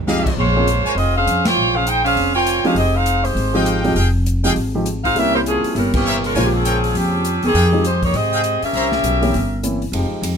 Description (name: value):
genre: jazz, big band swing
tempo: 201 BPM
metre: 4/4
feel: swing 61% on 8ths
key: F minor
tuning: A4 = 444 Hz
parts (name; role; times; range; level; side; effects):
- upright bass; bass; 0.0-10.4 s; F1 to Ab2; -20 LUFS; equal; none
- warm grand piano; accompaniment; 0.1-9.8 s; Db3 to C5; -21 LUFS; equal; none
- brilliant trumpet section; stabs; 0.1-8.9 s; G4 to Bb5; -23 LUFS; left 1 dB; none
- swinging big-band drum kit; drums; 0.1-10.3 s; crash cymbal, hi-hat, kick drum, ride cymbal, snare drum; -27 LUFS; left 1 dB; none
- clear saxophone section; melody; 0.4-9.6 s; Eb3 to G5; -18 LUFS; equal; none
- warm trombone section; sustained chords; 9.9-10.4 s; F3 to G4; -25 LUFS; equal; none
room: light reverb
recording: close, detailed microphones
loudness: -15 LUFS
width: side -7 dB against mid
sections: 0.0-9.9 A section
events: band accent 1.4, 5.9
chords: 0.4 Bbm9; 2.8 Fm9; 5.2 C7b9; 6.3 Bbm9; 7.5 Fm9; 8.7 C7b9